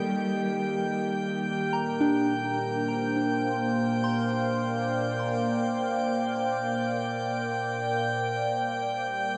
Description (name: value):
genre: ambient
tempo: free time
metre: none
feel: none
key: unclear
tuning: A4 = 440 Hz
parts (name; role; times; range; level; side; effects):
- dark cello; melody; 0.0-1.0 s; G3; -38 LUFS; equal; tape echo
- evolving wavetable pad; sustained chords; 0.0-9.4 s; Bb2 to G5; -31 LUFS; equal; chorus, built-in reverb, shimmer reverb
- soft synth bell; arpeggios; 0.0-8.6 s; D4 to C6; -35 LUFS; equal; chorus, tremolo, shimmer reverb, tape echo
- drifting glass-harmonics texture; texture; 0.0-9.4 s; G5 to G6; -33 LUFS; equal; chorus, built-in reverb, shimmer reverb
room: wet huge ambient reverb, RT60 7.6 s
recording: dark, warm production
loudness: -28 LUFS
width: mono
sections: 0.0-9.4 A section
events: none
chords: 0.0 Eb; 1.6 Bbadd9; 8.5 G5